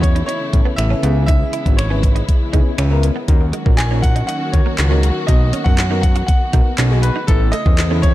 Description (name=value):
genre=dance-pop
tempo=120 BPM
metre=4/4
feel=straight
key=unclear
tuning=A4 = 440 Hz
part: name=clear concert grand piano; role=melody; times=0.0-8.1 s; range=A4 to G#5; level=-25 LUFS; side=equal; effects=none
part: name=soft electric-piano-like synth keys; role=accompaniment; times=0.0-8.1 s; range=B3 to B4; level=-26 LUFS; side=left 2 dB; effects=chorus, phaser, sidechain pumping
part: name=warm studio string section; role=sustained chords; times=0.0-8.1 s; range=C#3 to F#4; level=-26 LUFS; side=left 2 dB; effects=sidechain pumping
part: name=direct-recorded clean electric guitar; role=riff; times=0.0-8.1 s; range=G#3 to F#4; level=-28 LUFS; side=right 8 dB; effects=ensemble chorus
part: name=fat analog bass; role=bass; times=0.0-8.1 s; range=G#1 to F#2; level=-16 LUFS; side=equal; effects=sidechain pumping
part: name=smooth R&B drum kit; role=drums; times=0.0-8.1 s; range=finger snaps, handclaps, hi-hat, kick drum, snare drum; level=-16 LUFS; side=equal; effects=none
part: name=swell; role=sound effects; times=7.7-8.1 s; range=none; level=-30 LUFS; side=left 2 dB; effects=none
room=little or no reverb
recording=dark, warm production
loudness=-13 LUFS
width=side -15 dB against mid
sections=0.0-8.1 A section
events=none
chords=0.0 Aadd9; 1.0 C#m7; 3.3 D#m7; 5.3 Bmaj7; 7.3 Aadd9